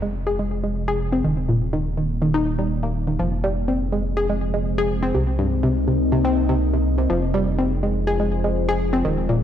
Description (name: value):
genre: techno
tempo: 123 BPM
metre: 4/4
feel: straight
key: F minor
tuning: A4 = 439 Hz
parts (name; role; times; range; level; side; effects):
- deep dark ambient pad; sustained chords; 0.1-9.4 s; Bb3 to Eb5; -25 LUFS; left 1 dB; chorus, built-in reverb
- analog pluck; arpeggios; 0.0-9.4 s; G2 to Ab4; -22 LUFS; equal; chorus, tape echo
- round analog bass; bass; 0.0-9.4 s; Eb1 to C2; -25 LUFS; equal; none
- impact; sound effects; 0.0-1.2 s; none; -39 LUFS; equal; none
room: light reverb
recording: dry, gritty hardware recording, transformer saturation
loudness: -19 LUFS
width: side -10 dB against mid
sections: 0.0-9.4 A section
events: impact 0.0-1.2; filter sweep on synth arpeggio sound 0.0-9.4; filter sweep on ambient pad 0.0-9.4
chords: 0.0 Fm; 1.2 Eb; 3.2 Fm; 5.1 Cm7; 7.1 Fm